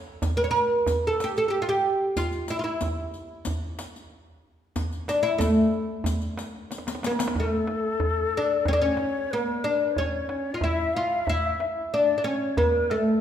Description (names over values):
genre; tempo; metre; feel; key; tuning
Persian modal ensemble; 92 BPM; 4/4; straight; A dastgah homayun; A4 = 440 Hz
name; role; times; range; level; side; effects
oud; melody; 0.0-13.2 s; A3 to C#5; -24 LUFS; equal; none
tombak; percussion; 0.1-13.1 s; none; -30 LUFS; right 1 dB; none
riq; percussion; 0.2-7.4 s; none; -35 LUFS; left 4 dB; none
breathy ney; second line; 7.0-13.2 s; A4 to F5; -30 LUFS; left 3 dB; none
room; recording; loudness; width
wet recital hall reverb, RT60 1.7 s; minimal, uncompressed stereo recording; -23 LUFS; side -9 dB against mid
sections
0.0-7.4 A section; 7.4-13.2 B section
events
drum fill 6.7-7.4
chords
none